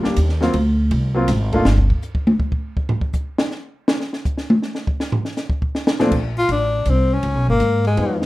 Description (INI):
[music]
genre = jazz, small-group swing and bop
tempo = 162 BPM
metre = 3/4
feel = swing 66% on 8ths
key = unclear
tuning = A4 = 440 Hz
[part]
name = warm concert grand piano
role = accompaniment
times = 0.0-1.7, 6.0-8.2 s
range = Bb2 to A5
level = -20 LUFS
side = left 1 dB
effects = none
[part]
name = upright bass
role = bass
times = 0.0-1.9, 6.0-8.3 s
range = G1 to Ab2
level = -18 LUFS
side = equal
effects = none
[part]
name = compact cocktail drum kit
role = drums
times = 0.0-8.3 s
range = crash cymbal, hi-hat, kick drum, ride cymbal, snare drum, toms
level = -20 LUFS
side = equal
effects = none
[part]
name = clear tenor saxophone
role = melody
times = 6.4-8.2 s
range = Ab3 to F4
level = -19 LUFS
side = left 2 dB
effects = none
[sound]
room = wet small room reverb, RT60 0.5 s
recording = rough home demo mix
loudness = -17 LUFS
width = side -18 dB against mid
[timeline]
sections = 0.0-6.1 A section; 6.1-8.3 B section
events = drum solo 1.7-6.1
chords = 0.0 Ebmaj9; 0.5 Dm7b13; 1.7 N.C.; 5.0 F; 6.1 Bbmaj7; 7.2 Db9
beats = 0.18 | 0.55 0.92 1.29 | 1.66 2.03 2.40 | 2.77 3.14 3.52 | 3.89 4.26 4.63 | 5.00 5.37 5.74 | 6.12 6.49 6.86 | 7.23 7.60 7.98